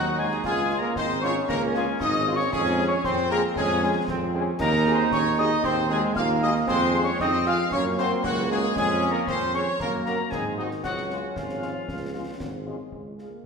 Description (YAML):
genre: military-style march for wind band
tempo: 115 BPM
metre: 2/4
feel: straight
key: Db major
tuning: A4 = 440 Hz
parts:
  - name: warm trumpet section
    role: melody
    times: 0.0-13.3 s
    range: Eb4 to F5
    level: -29 LUFS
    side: left 2 dB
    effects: none
  - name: clear euphonium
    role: second line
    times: 0.0-13.5 s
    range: Eb3 to F4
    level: -30 LUFS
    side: right 1 dB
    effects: none
  - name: mellow piccolo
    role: second line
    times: 0.0-12.4 s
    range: Eb5 to F6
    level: -30 LUFS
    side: left 4 dB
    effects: none
  - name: warm trombone section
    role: sustained chords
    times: 0.0-12.6 s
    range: Ab3 to F4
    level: -29 LUFS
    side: right 3 dB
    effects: none
  - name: mellow tuba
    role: bass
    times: 0.0-13.4 s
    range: Ab1 to Ab2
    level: -28 LUFS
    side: right 2 dB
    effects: none
  - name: mellow French horn section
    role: accompaniment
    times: 0.2-13.3 s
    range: Ab3 to Ab4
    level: -34 LUFS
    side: left 3 dB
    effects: none
  - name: concert snare drum, clash cymbals and concert bass drum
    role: drums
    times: 0.3-13.3 s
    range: none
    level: -37 LUFS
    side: left 2 dB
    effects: none
room: wet scoring stage reverb, RT60 1.6 s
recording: minimal, uncompressed stereo recording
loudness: -22 LUFS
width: side -5 dB against mid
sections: 0.0-12.9 A section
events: none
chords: 0.4 Db; 2.5 Db/F; 4.6 Ab7/Eb; 6.7 Fm7; 7.7 Gb; 8.8 Db/F; 9.8 Gb; 10.3 Ab7; 10.8 Db; 12.9 Db5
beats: | 0.44 0.96 | 1.48 2.00 | 2.52 3.04 | 3.56 4.08 | 4.61 5.12 | 5.64 6.17 | 6.68 7.21 | 7.72 8.24 | 8.76 9.28 | 9.80 10.32 | 10.84 11.36 | 11.88 12.40 | 12.92 13.45